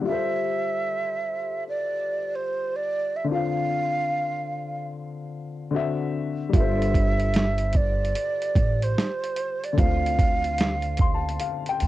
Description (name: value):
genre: lo-fi hip hop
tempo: 74 BPM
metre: 4/4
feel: swing 64% on 16ths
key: unclear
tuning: A4 = 440 Hz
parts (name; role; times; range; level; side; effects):
- warm upright piano; accompaniment; 0.0-11.9 s; D3 to C6; -30 LUFS; left 6 dB; low-pass filter
- breathy hollow jazz flute; melody; 0.1-11.4 s; C5 to F5; -27 LUFS; right 2 dB; low-pass filter, plate reverb
- upright bass; bass; 6.5-11.9 s; G1 to E2; -25 LUFS; right 1 dB; none
- lo-fi sampler-style drum kit; drums; 6.5-11.9 s; hi-hat, kick drum, snare drum; -23 LUFS; right 1 dB; none
room: light reverb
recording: home recording on cassette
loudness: -22 LUFS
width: side -15 dB against mid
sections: 0.0-6.5 A section; 6.5-11.9 B section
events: none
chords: 0.0 G9sus4; 3.3 Dm7; 5.7 D9; 6.5 G9sus4; 9.8 Dm7